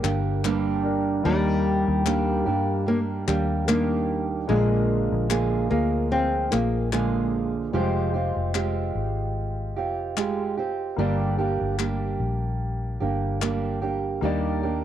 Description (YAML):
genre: acoustic pop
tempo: 74 BPM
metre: 4/4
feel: swing 55% on 16ths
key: unclear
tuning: A4 = 440 Hz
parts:
  - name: nylon-string guitar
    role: melody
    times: 0.0-7.5 s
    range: G3 to C4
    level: -26 LUFS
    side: left 3 dB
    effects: cassette tape
  - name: fingerpicked old ladder-braced acoustic guitar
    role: accompaniment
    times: 0.0-14.8 s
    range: G2 to Ab4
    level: -26 LUFS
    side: right 6 dB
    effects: cassette tape
  - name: warm concert grand piano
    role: accompaniment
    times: 0.0-14.8 s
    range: G3 to D5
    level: -34 LUFS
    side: left 9 dB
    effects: cassette tape
  - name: vintage muted fingered electric bass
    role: bass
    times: 0.0-14.8 s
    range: F1 to G2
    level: -27 LUFS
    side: left 2 dB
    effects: tube saturation
  - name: group handclap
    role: percussion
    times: 0.0-13.6 s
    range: none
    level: -32 LUFS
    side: left 10 dB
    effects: none
room: moderate spring reverb, RT60 1.6 s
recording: home recording on cassette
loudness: -22 LUFS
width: side -10 dB against mid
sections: 0.0-7.7 A section; 7.7-14.8 B section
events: none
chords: 0.0 Gm; 1.3 Ebmaj7; 4.5 Bb7; 7.7 Fmadd9; 11.0 Gm; 14.2 Ebmaj7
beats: 0.44 | 1.25 2.06 2.87 3.69 | 4.50 5.31 6.12 6.93 | 7.74 8.55 9.36 10.18 | 10.99 11.80 12.61 13.42 | 14.23